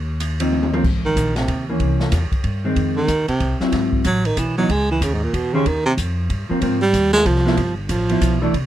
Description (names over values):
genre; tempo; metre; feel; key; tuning
jazz, small-group swing and bop; 187 BPM; 3/4; swing 62% on 8ths; unclear; A4 = 440 Hz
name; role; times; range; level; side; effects
upright bass; bass; 0.0-8.7 s; G1 to Ab2; -22 LUFS; equal; none
open jazz drum kit; drums; 0.2-8.6 s; crash cymbal, hi-hat, kick drum, ride cymbal, snare drum, toms; -26 LUFS; equal; none
hollow-body jazz guitar; accompaniment; 0.4-8.5 s; Eb3 to C5; -20 LUFS; equal; none
breathy baritone saxophone; second line; 1.1-8.4 s; Ab2 to Ab3; -19 LUFS; right 2 dB; none
room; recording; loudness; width
light reverb; close, detailed microphones; -17 LUFS; side -12 dB against mid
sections
0.8-8.5 A section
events
drum fill 0.5-0.8; baritone saxophone solo 0.8-8.7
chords
0.0 Ab6 (rootless); 0.8 Abadd9; 1.8 C7b9; 2.8 Fm7; 3.7 Ab7alt; 4.7 Dbmadd9; 5.7 Ebadd9; 6.6 Ab69; 7.6 G13